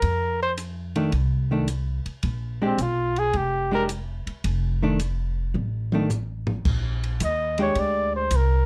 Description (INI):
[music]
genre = jazz, small-group swing and bop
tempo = 109 BPM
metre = 4/4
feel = swing 69% on 8ths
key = unclear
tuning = A4 = 440 Hz
[part]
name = mellow trumpet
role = melody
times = 0.0-3.8, 7.2-8.7 s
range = C4 to Eb5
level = -26 LUFS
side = equal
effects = none
[part]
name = upright bass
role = bass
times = 0.0-8.7 s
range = F1 to F2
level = -28 LUFS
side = equal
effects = none
[part]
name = compact cocktail drum kit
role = drums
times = 0.0-8.5 s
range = crash cymbal, hi-hat, kick drum, ride cymbal, toms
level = -31 LUFS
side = equal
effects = none
[part]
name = hollow-body jazz guitar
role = accompaniment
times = 1.0-8.3 s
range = Eb3 to G4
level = -27 LUFS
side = equal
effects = none
[sound]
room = light reverb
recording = dark, warm production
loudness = -25 LUFS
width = mono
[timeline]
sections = 0.0-6.7 A section; 6.7-8.7 B section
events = drum fill 5.5-6.7; trumpet solo 6.7-8.7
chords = 0.0 F6; 2.2 Bb6; 4.4 F6; 6.7 Bb13